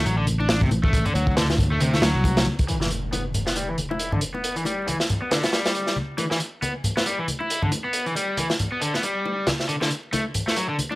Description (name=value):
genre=breakbeat, breaks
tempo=137 BPM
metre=4/4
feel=swing 57% on 16ths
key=E minor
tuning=A4 = 441 Hz
part: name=crunchy overdriven guitar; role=riff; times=0.0-11.0 s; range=C3 to E4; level=-26 LUFS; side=left 1 dB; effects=vintage 12-bit sampler grit, low-pass filter, digital delay
part: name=picked electric bass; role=bass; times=0.0-2.4 s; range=A1 to D2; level=-23 LUFS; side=equal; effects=none
part: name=crunchy breakbeat drum kit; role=drums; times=0.1-10.9 s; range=hi-hat, kick drum, snare drum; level=-24 LUFS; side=equal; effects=high-pass filter on kick, high-pass filter on hats, high-pass filter on snare, high-pass filter on room
part: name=congas and bongos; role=percussion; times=0.3-11.0 s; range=none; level=-29 LUFS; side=left 1 dB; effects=none
part: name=impact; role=sound effects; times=2.7-4.4 s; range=none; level=-32 LUFS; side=equal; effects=none
room=light reverb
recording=vinyl crackle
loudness=-21 LUFS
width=side -20 dB against mid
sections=0.0-2.7 A section; 2.7-11.0 B section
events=impact 2.7-4.4; filter sweep on overdriven electric guitar 2.7-11.0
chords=0.0 D7; 2.7 Em; 9.7 D